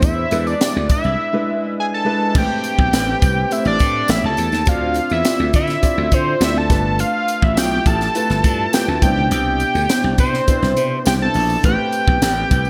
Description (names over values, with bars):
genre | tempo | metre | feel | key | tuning
polished 1980s jazz-funk pop | 103 BPM | 4/4 | straight | A minor | A4 = 441 Hz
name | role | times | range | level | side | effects
fat analog lead | melody | 0.0-12.7 s | C5 to A5 | -22 LUFS | equal | chorus
warm concert grand piano | accompaniment | 0.0-12.7 s | B2 to D5 | -25 LUFS | equal | subtle chorus
slap bass | bass | 0.0-12.7 s | G1 to D3 | -23 LUFS | equal | none
crisp fusion drum kit | drums | 0.0-12.6 s | crash cymbal, hi-hat, kick drum, snare drum | -21 LUFS | equal | gated reverb
tambourine | percussion | 0.0-12.7 s | none | -37 LUFS | equal | none
room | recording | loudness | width
moderate lush hall reverb, RT60 1.9 s, small room reverb | bright 1980s-style digital production | -17 LUFS | mono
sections
0.0-2.4 A section; 2.4-12.7 B section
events
none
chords
0.0 E7; 2.4 Am9; 4.1 A7; 4.7 Dm9; 6.7 G13; 9.0 Cmaj9; 11.6 Am9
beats
| 0.03 0.61 1.19 1.77 | 2.35 2.93 3.51 4.09 | 4.67 5.25 5.83 6.41 | 6.99 7.57 8.15 8.73 | 9.32 9.90 10.48 11.06 | 11.64 12.22